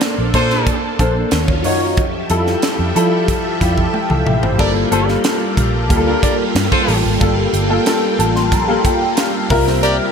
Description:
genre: polished 1980s jazz-funk pop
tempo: 92 BPM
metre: 4/4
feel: straight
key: G dorian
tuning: A4 = 440 Hz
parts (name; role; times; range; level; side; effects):
- warm baby grand piano; accompaniment; 0.0-10.1 s; Gb3 to C6; -18 LUFS; left 2 dB; ensemble chorus
- string machine, violins; sustained chords; 0.0-10.1 s; C3 to E5; -21 LUFS; right 1 dB; phaser, ensemble chorus
- crisp fusion drum kit; drums; 0.0-10.0 s; crash cymbal, hi-hat, kick drum, snare drum, toms; -19 LUFS; right 1 dB; gated reverb
- vintage muted fingered electric bass; bass; 0.2-10.0 s; G1 to F3; -19 LUFS; right 1 dB; none
- warm horn section; second line; 0.3-10.0 s; D4 to D5; -21 LUFS; equal; none
room: moderate lush hall reverb, RT60 2.9 s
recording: bright 1980s-style digital production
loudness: -13 LUFS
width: side -6 dB against mid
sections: 0.0-4.6 A section; 4.6-10.1 B section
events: drum fill 3.9-4.6; grand piano fill 7.9-9.8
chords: 0.0 Bbmaj9; 1.3 Ebm9; 2.0 Fmaj9; 4.6 Gm9; 9.5 C7sus4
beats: 0.02 0.67 1.33 | 1.98 2.63 3.29 3.94 | 4.59 5.25 5.90 6.56 | 7.21 7.87 8.52 9.18 | 9.83

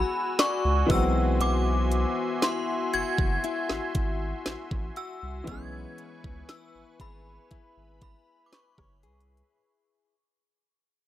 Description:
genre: contemporary R&B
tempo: 59 BPM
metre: 4/4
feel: straight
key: unclear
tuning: A4 = 441 Hz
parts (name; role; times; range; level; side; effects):
- synth chime; melody; 0.0-9.3 s; B5 to G#6; -31 LUFS; equal; ensemble chorus, digital delay
- bright grand piano; accompaniment; 0.0-9.6 s; E3 to G#4; -31 LUFS; equal; none
- warm analog pad; sustained chords; 0.0-9.5 s; F#4 to E6; -34 LUFS; equal; chorus
- direct-recorded clean electric guitar; arpeggios; 0.0-10.1 s; B3 to D5; -33 LUFS; left 7 dB; none
- trap drum kit; drums; 0.4-9.5 s; hi-hat, kick drum, rim click, snare drum; -28 LUFS; equal; none
- saturated sub bass; bass; 0.6-9.4 s; F#1 to C#2; -28 LUFS; equal; none
room: digital ambience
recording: none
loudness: -24 LUFS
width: side -13 dB against mid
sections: 0.0-9.5 A section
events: fade-out 0.0-9.5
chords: 0.0 E9; 0.9 G#7alt; 5.5 C#m7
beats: 0.39 | 1.41 2.42 3.44 4.46 | 5.47 6.49 7.51 8.53

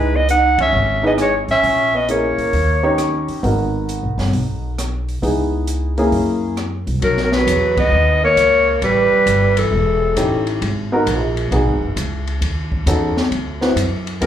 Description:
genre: jazz, small-group swing and bop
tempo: 134 BPM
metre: 4/4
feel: swing 67% on 8ths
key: G# minor, B major from 7.0 s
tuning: A4 = 437 Hz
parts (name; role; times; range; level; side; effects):
- breathy clarinet; melody; 0.0-3.3, 7.0-10.5, 14.2-14.3 s; A4 to F#5; -16 LUFS; equal; plate reverb, slapback echo
- breathy tenor saxophone; second line; 0.0-3.2, 7.0-10.5, 14.2-14.3 s; E3 to D#4; -22 LUFS; right 2 dB; plate reverb, slapback echo
- warm baby grand piano; accompaniment; 0.0-6.6, 10.2-14.3 s; A#3 to C#5; -20 LUFS; equal; plate reverb, slapback echo
- upright bass; bass; 0.0-14.3 s; E1 to F#2; -20 LUFS; equal; none
- open jazz drum kit; drums; 0.3-14.3 s; hi-hat, kick drum, ride cymbal, rim click, snare drum; -25 LUFS; left 1 dB; none
room: moderate club reverb, RT60 0.8 s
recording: live gig heard through the venue's PA, club reverb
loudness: -15 LUFS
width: side -10 dB against mid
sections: 0.0-7.0 A section; 7.0-14.3 B section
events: band accent 0.5, 7.7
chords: 0.0 C#m9; 1.6 A#m7b5; 2.5 D#7; 3.4 G#m7; 5.2 C#m7; 6.1 F#7; 7.0 Bmaj9; 8.8 A7#11; 10.6 G#m9; 12.4 D#m7b5; 13.3 D9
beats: 0.29 0.74 1.19 | 1.64 2.08 2.53 2.98 | 3.43 3.88 4.33 4.78 | 5.23 5.68 6.12 6.58 | 7.02 7.47 7.92 8.37 | 8.82 9.27 9.72 10.17 | 10.62 11.07 11.52 11.97 | 12.42 12.87 13.31 13.76 | 14.21

